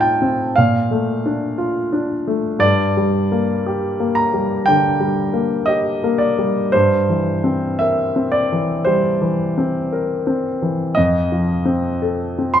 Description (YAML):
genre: classical, romantic nocturne for solo piano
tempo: 58 BPM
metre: 4/4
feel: rubato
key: unclear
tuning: A4 = 441 Hz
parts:
  - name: warm grand piano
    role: solo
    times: 0.0-12.6 s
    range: F2 to C6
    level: -16 LUFS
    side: equal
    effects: none
room: moderate recital hall reverb, RT60 1.6 s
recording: close, detailed microphones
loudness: -16 LUFS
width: side -9 dB against mid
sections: 0.0-12.6 A section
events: none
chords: 0.0 F7/A; 0.6 Bbmaj7; 2.6 Gm; 6.7 C7/G; 11.0 F7